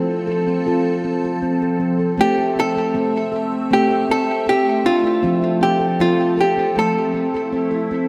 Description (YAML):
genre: world meditative, meditative tuned percussion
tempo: 79 BPM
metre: 4/4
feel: straight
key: A minor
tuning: A4 = 440 Hz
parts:
  - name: evolving wavetable pad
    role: sustained chords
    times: 0.0-8.1 s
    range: F3 to E5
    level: -27 LUFS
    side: equal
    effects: ensemble chorus, built-in reverb, phaser
  - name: handpan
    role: arpeggios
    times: 0.0-8.1 s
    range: F3 to A4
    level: -22 LUFS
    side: equal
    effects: delay
  - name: archtop guitar, miked and amplified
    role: melody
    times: 2.2-7.9 s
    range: F4 to A4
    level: -21 LUFS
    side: equal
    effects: delay
room: wet lush hall reverb, RT60 3.1 s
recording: dreamy mix soaked in reverb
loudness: -18 LUFS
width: mono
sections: 0.0-8.1 A section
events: none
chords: 0.0 F; 2.2 Am; 5.2 F; 6.8 Am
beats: 0.66 1.42 | 2.19 2.95 3.71 4.47 | 5.24 6.00 6.76 7.53